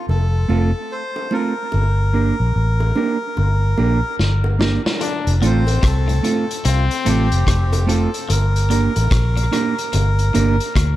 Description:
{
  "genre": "dub reggae",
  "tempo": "73 BPM",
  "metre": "4/4",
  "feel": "swing 63% on 16ths",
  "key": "F major",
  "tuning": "A4 = 441 Hz",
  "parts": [
    { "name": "melodica", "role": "melody", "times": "0.0-10.7 s", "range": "F4 to C5", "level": "-26 LUFS", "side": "equal", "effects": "dub echo" },
    { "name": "vintage muted fingered electric bass", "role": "bass", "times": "0.1-11.0 s", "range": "F1 to D2", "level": "-17 LUFS", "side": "equal", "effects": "none" },
    { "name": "bongos", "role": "percussion", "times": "0.1-10.6 s", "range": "none", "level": "-32 LUFS", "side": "right 2 dB", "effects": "dub echo" },
    { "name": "mellow electric guitar", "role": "accompaniment", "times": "0.5-10.6 s", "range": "A3 to Bb4", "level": "-23 LUFS", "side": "right 5 dB", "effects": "dub echo" },
    { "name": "vintage drum kit", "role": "drums", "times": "4.2-11.0 s", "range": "hi-hat, kick drum, rim click, snare drum", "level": "-22 LUFS", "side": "left 1 dB", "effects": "none" },
    { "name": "brilliant trombone", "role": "second line", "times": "5.0-7.8 s", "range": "C4 to D4", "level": "-26 LUFS", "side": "left 6 dB", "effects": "dub echo" },
    { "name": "twangy electric guitar", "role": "arpeggios", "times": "5.0-11.0 s", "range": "A2 to F3", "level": "-31 LUFS", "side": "left 6 dB", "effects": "none" }
  ],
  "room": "small room reverb",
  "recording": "none",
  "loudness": "-15 LUFS",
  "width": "side -14 dB against mid",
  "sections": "0.0-5.0 A section; 5.0-11.0 B section",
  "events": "drum fill 4.2-5.0",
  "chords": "0.0 F; 1.7 Gm; 5.0 F; 8.3 Gm"
}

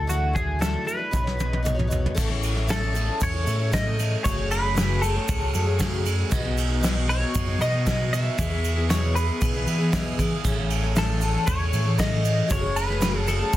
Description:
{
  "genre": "folk rock and heartland rock",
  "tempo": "116 BPM",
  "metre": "4/4",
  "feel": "straight",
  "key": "unclear",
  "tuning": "A4 = 441 Hz",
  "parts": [
    { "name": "twelve-string electric guitar", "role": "melody", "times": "0.0-13.6 s", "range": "F#4 to E5", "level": "-28 LUFS", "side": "left 1 dB", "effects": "analog chorus" },
    { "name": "picked twelve-string acoustic guitar", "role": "accompaniment", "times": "0.0-13.6 s", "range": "E2 to C#5", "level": "-29 LUFS", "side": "left 2 dB", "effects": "none" },
    { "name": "fingered electric bass", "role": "bass", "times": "0.0-13.6 s", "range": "F#1 to E3", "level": "-25 LUFS", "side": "equal", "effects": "none" },
    { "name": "soft brush drum kit", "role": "drums", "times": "0.1-13.6 s", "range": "crash cymbal, hi-hat, kick drum, ride cymbal, snare drum, toms", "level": "-26 LUFS", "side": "right 1 dB", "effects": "none" },
    { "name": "tube shaker", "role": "percussion", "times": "0.1-13.6 s", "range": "none", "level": "-37 LUFS", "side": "right 7 dB", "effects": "none" }
  ],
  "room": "small room ambience",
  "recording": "dense, heavily limited modern master",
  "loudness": "-21 LUFS",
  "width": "side -14 dB against mid",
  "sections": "0.0-2.2 A section; 2.2-13.6 B section",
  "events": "drum fill 1.1-2.2",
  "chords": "0.0 Dadd9; 1.1 Badd9; 2.2 A; 4.2 F#madd9; 6.3 B; 8.4 E; 10.4 A; 12.5 F#madd9"
}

